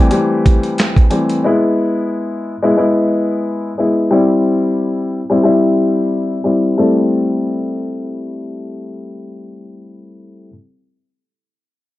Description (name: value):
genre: hip hop, boom-bap hip-hop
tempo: 90 BPM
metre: 4/4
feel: swing 55% on 16ths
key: A minor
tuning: A4 = 441 Hz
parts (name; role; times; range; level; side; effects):
- dark upright piano; accompaniment; 0.0-10.5 s; E3 to A4; -14 LUFS; left 1 dB; cassette tape, high-pass filter, low-pass filter, plate reverb
- dusty soul sampler-style drum kit; drums; 0.1-1.4 s; handclaps, hi-hat, kick drum, snare drum; -12 LUFS; right 1 dB; none
room: moderate studio ambience, RT60 0.5 s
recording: dark, warm production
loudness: -13 LUFS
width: side -16 dB against mid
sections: 0.0-6.8 A section; 6.8-9.4 B section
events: filter sweep on upright piano 0.0-6.8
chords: 0.0 Am7; 1.4 E/G#; 4.1 C; 6.8 Am7